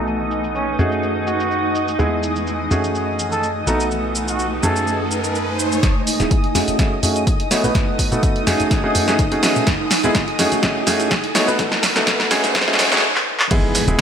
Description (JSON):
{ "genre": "piano house", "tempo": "125 BPM", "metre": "4/4", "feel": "swing 53% on 16ths", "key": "F# dorian", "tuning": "A4 = 440 Hz", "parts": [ { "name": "growling trumpet", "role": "melody", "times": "0.0-5.0 s", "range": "C#4 to A4", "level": "-26 LUFS", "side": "right 1 dB", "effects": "tape echo" }, { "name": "analog string pad", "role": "sustained chords", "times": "0.0-14.0 s", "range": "B4 to D#6", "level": "-28 LUFS", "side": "equal", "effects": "ensemble chorus, sidechain pumping" }, { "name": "bright baby grand piano", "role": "riff", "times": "0.0-14.0 s", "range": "G#3 to C#5", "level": "-21 LUFS", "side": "right 1 dB", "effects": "sidechain pumping, low-pass filter, tape echo" }, { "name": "plucky analog bass", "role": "bass", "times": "0.0-13.9 s", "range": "E1 to B2", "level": "-25 LUFS", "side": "equal", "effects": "sidechain pumping" }, { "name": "granular cloud pad", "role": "texture", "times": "0.0-13.0 s", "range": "D#4 to G#5", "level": "-25 LUFS", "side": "equal", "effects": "built-in reverb, sidechain pumping" }, { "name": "punchy analog drum machine", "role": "drums", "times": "0.1-14.0 s", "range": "crash cymbal, handclaps, hi-hat, shaker, snare drum", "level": "-20 LUFS", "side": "equal", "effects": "none" }, { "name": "riser and impact", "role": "sound effects", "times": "3.5-14.0 s", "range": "none", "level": "-29 LUFS", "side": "equal", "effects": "none" }, { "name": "electronic kick drum", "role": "drums", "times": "5.8-13.6 s", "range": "none", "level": "-20 LUFS", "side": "equal", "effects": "none" }, { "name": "dusty soul sampler-style drum kit", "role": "drums", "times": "13.5-13.9 s", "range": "ride cymbal, snare drum", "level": "-26 LUFS", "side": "right 1 dB", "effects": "none" } ], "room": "moderate lush hall reverb, RT60 1.7 s", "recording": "high-pass filter, low-pass filter", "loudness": "-16 LUFS", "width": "side -8 dB against mid", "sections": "0.0-5.8 A section; 5.8-13.5 B section", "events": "filter sweep 0.0-5.8, 5.8-13.5; riser 3.5-5.8, 5.8-13.0; build-up 5.8-13.5; drum fill 5.8-13.0, 13.2-13.5; filter sweep on grand piano 5.8-13.5; stop 13.0-13.5; impact 13.5-14.0", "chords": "0.0 B7; 0.8 F#m69; 2.0 Emaj7; 2.7 F#m69; 3.7 B7; 4.6 F#m69; 5.8 Emaj7; 6.6 F#m69; 7.5 B7; 8.5 F#m69; 9.7 Emaj7; 10.4 F#m69; 11.4 B7; 12.3 F#m69" }